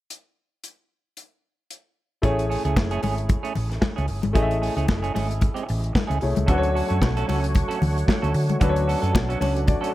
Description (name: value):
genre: disco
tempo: 113 BPM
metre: 4/4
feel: swing 56% on 16ths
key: A major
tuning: A4 = 440 Hz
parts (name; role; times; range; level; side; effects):
- modern studio drum kit; drums; 0.1-9.9 s; hi-hat, kick drum, snare drum; -25 LUFS; equal; none
- semi-hollow electric guitar; accompaniment; 2.2-9.9 s; A3 to A4; -29 LUFS; right 6 dB; spring reverb
- warm concert grand piano; accompaniment; 2.2-9.9 s; F#3 to E5; -28 LUFS; left 3 dB; none
- hollow-body short-scale fingered electric bass; bass; 2.2-9.7 s; F#1 to D3; -24 LUFS; equal; none
- congas; percussion; 2.2-9.8 s; none; -28 LUFS; left 5 dB; none
- percussive tonewheel organ; sustained chords; 6.5-9.9 s; F#3 to C#5; -29 LUFS; equal; overdrive, chorus vibrato, slow rotary speaker
room: small room ambience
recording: none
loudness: -20 LUFS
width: side -15 dB against mid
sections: 0.1-2.2 A section; 2.2-9.9 B section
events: grand piano fill 9.1-9.9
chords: 0.1 N.C.; 2.2 Amaj7; 6.5 Dmaj7